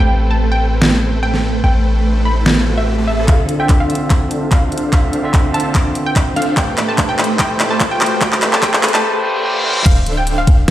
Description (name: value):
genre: future bass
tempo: 146 BPM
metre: 4/4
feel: swing 54% on 16ths, half-time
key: D dorian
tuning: A4 = 440 Hz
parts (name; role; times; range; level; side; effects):
- wide unison pluck; melody; 0.0-10.6 s; E5 to B5; -22 LUFS; right 1 dB; sidechain pumping, digital delay
- overdriven tine electric piano; accompaniment; 0.0-9.9 s; D3 to E6; -21 LUFS; right 1 dB; sidechain pumping, digital delay
- dense compressed supersaw; riff; 0.0-10.7 s; A3 to A5; -21 LUFS; equal; sidechain pumping, low-pass filter
- warm 808-style bass; bass; 0.0-3.3, 9.9-10.7 s; D1 to A1; -16 LUFS; equal; sidechain pumping
- riser and reverse cymbal; sound effects; 1.4-9.9 s; none; -25 LUFS; left 2 dB; none
- pop drum kit; drums; 0.8-10.7 s; crash cymbal, finger snaps, handclaps, hi-hat, snare drum; -17 LUFS; equal; overdrive
- electronic kick drum; drums; 3.3-10.6 s; none; -13 LUFS; equal; overdrive
room: light reverb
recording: played on a big sound system in a bare room, stone room reverb, high-pass filter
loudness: -12 LUFS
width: side -13 dB against mid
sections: 0.0-3.3 A section; 3.3-9.9 B section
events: riser 1.4-3.3, 3.3-9.0; build-up 3.3-9.9; drum fill 3.3-9.0; filter sweep on supersaw synth 3.3-9.9; filter sweep 3.3-9.9; break 9.0-9.9; reverse cymbal 9.0-9.9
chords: 0.0 Am9; 3.3 Dm9; 6.6 Am9; 9.9 Dm9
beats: 0.41 0.82 1.23 | 1.64 2.05 2.46 2.87 | 3.28 3.69 4.10 4.51 | 4.93 5.34 5.75 6.16 | 6.57 6.98 7.39 7.80 | 8.21 8.62 9.04 9.45 | 9.86 10.27 10.68